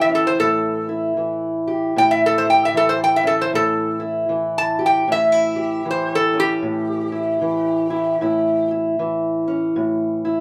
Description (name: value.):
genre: acoustic country blues, solo or duo.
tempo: 77 BPM.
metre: 4/4.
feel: swing 62% on 8ths.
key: A mixolydian.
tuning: A4 = 440 Hz.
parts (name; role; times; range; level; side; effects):
metal-body resonator slide guitar; melody; 0.0-8.7 s; G4 to A5; -20 LUFS; equal; none.
fingerpicked steel-string acoustic guitar; accompaniment; 0.0-10.4 s; A2 to G4; -23 LUFS; equal; none.
room: moderate studio reverb, RT60 0.5 s.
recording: band playing live in one room.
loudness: -19 LUFS.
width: mono.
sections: 0.0-10.4 A section.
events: resonator guitar played with a steel bar solo 0.0-10.4.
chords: 0.0 A7.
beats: 0.39 1.17 | 1.95 2.74 3.52 4.30 | 5.08 5.86 6.64 7.42 | 8.20 8.98 9.76.